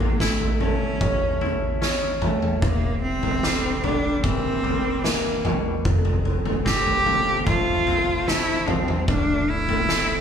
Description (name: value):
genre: post-rock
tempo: 74 BPM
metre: 4/4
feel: straight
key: unclear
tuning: A4 = 440 Hz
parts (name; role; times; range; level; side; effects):
- clear cello; melody; 0.0-10.2 s; A3 to G4; -24 LUFS; equal; none
- twangy electric guitar; arpeggios; 0.0-10.2 s; D2 to E4; -32 LUFS; left 2 dB; tremolo
- vibraphone with soft mallets; arpeggios; 0.0-10.2 s; A4 to F6; -31 LUFS; right 2 dB; none
- metallic FM bass; bass; 0.0-10.2 s; D1 to A1; -29 LUFS; equal; none
- oversized low-tuned drum kit; drums; 0.0-10.1 s; kick drum, snare drum, toms; -24 LUFS; equal; none
room: moderate large studio reverb, RT60 1.1 s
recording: band playing live in one room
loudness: -20 LUFS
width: side -8 dB against mid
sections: 0.0-10.2 A section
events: none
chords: 0.0 A; 2.6 Edim; 5.9 F; 9.1 Dm7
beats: 0.21 1.01 1.82 | 2.63 3.44 4.24 5.05 | 5.86 6.66 7.47 8.28 | 9.08 9.89